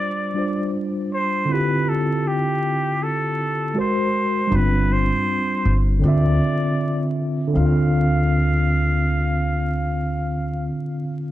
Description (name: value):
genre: lo-fi hip hop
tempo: 79 BPM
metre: 4/4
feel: swing 61% on 16ths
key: D minor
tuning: A4 = 440 Hz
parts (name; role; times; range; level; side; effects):
- trumpet with straight mute; melody; 0.0-10.7 s; G4 to F5; -25 LUFS; right 1 dB; low-pass filter
- tine electric piano; accompaniment; 0.0-11.3 s; D3 to F5; -21 LUFS; equal; medium stereo tremolo, low-pass filter
- upright bass; bass; 4.5-10.7 s; G1 to D2; -21 LUFS; equal; none
room: light reverb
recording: dark, warm production, vinyl crackle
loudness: -18 LUFS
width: side -14 dB against mid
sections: 0.0-7.6 A section; 7.6-10.6 B section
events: break 0.0-4.5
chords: 0.0 G7sus4; 1.5 Dm11; 3.8 G#9; 4.5 G7sus4; 6.0 Dm9; 7.6 Dm7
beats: 0.72 | 1.48 2.24 3.00 3.76 | 4.52 5.28 6.04 6.80 | 7.55 8.31 9.07 9.83